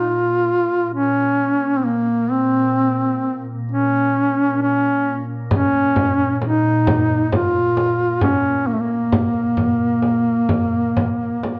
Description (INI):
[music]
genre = caucasian folk, Caucasian lament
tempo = 66 BPM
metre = 4/4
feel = rubato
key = Bb minor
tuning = A4 = 442 Hz
[part]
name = mellow duduk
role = melody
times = 0.0-11.6 s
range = A3 to F4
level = -20 LUFS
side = equal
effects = slapback echo
[part]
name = soft additive organ-like pad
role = drone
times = 0.0-11.6 s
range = Bb2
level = -28 LUFS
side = equal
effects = ensemble chorus, built-in reverb
[part]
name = frame drum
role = percussion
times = 5.5-11.6 s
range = none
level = -24 LUFS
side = equal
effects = none
[sound]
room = moderate recital hall reverb, RT60 1.4 s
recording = worn, warbling old tape, cassette tape, warbly pitch drift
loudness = -18 LUFS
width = mono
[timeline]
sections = 0.0-11.6 A section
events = none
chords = none